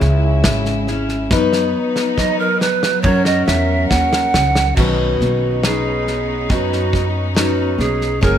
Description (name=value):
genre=acoustic folk duo or small band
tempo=69 BPM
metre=4/4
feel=straight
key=B major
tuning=A4 = 440 Hz
part: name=picked steel-string acoustic guitar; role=accompaniment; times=0.0-8.4 s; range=B2 to B4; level=-20 LUFS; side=left 3 dB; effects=none
part: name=warm chamber string section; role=sustained chords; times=0.0-8.4 s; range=C#3 to A#4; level=-25 LUFS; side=equal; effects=none
part: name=upright bass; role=bass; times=0.0-8.4 s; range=F#1 to F#2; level=-19 LUFS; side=equal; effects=none
part: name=loose indie drum kit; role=drums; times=0.0-8.4 s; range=crash cymbal, kick drum, snare drum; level=-20 LUFS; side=equal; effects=none
part: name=breathy bright large pan pipes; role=second line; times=2.2-8.4 s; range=F#4 to F#5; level=-19 LUFS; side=right 5 dB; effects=none
room=light reverb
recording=none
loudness=-14 LUFS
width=side -9 dB against mid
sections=0.0-4.8 A section; 4.8-8.4 B section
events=pan flute solo 0.0-4.8; drum fill 1.3-4.8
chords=0.0 C#m; 1.3 B/F#; 3.0 F#; 4.8 Badd9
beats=0.45 | 1.31 2.18 3.04 3.90 | 4.77 5.63 6.50 7.36 | 8.22